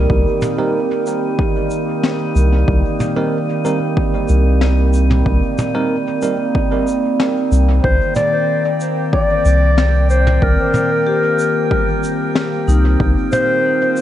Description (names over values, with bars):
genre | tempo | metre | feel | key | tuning
ambient dub | 93 BPM | 4/4 | straight | C minor | A4 = 440 Hz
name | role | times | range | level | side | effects
warbly tape-like pad | sustained chords | 0.0-14.0 s | Eb3 to C5 | -20 LUFS | equal | chorus, built-in reverb
soft dub sub bass | bass | 0.0-13.1 s | C2 | -13 LUFS | equal | none
drifting glass-harmonics texture | texture | 0.0-14.0 s | G3 to G5 | -24 LUFS | right 4 dB | chorus, built-in reverb
electronic kick drum | drums | 0.1-13.1 s | none | -19 LUFS | equal | overdrive
vintage brush drum kit | drums | 0.4-14.0 s | shaker, snare drum, toms | -24 LUFS | left 2 dB | dub echo
bell-like tine electric piano | stabs | 0.6-6.4 s | G3 to Bb4 | -25 LUFS | right 2 dB | medium stereo tremolo, dub echo
mellow clarinet | melody | 7.8-13.9 s | Bb4 to D5 | -17 LUFS | left 1 dB | dub echo
vibraphone with medium hard mallets | arpeggios | 9.1-14.0 s | G3 to D6 | -24 LUFS | left 5 dB | dub echo
room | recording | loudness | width
light reverb | nothing above 10.7 kHz | -13 LUFS | side -12 dB against mid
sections
0.0-14.0 A section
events
none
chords
0.0 Cm7